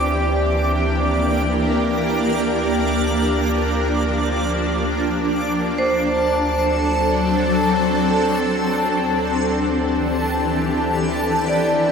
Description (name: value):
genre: ambient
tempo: free time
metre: none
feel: none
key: unclear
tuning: A4 = 440 Hz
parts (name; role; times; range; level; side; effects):
- shimmering ambient pad; sustained chords; 0.0-11.9 s; E3 to C5; -19 LUFS; left 1 dB; chorus, built-in reverb, shimmer reverb
- deep rumbling drone; bass; 0.0-11.9 s; D2; -26 LUFS; equal; built-in reverb
- backwards swelling texture; texture; 0.0-11.9 s; A4 to D6; -24 LUFS; equal; built-in reverb, shimmer reverb
- vibraphone with hard mallets; arpeggios; 5.8-11.9 s; C5 to D5; -23 LUFS; right 2 dB; ping-pong delay, shimmer reverb
room: wet concert hall reverb, RT60 2.3 s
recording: none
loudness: -17 LUFS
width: side -6 dB against mid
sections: 0.0-11.9 A section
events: fade-out on synth drone 0.0-11.9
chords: 0.0 Gm6/D; 2.1 Bb6/D; 5.3 D7; 8.5 Cmaj9/D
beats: free time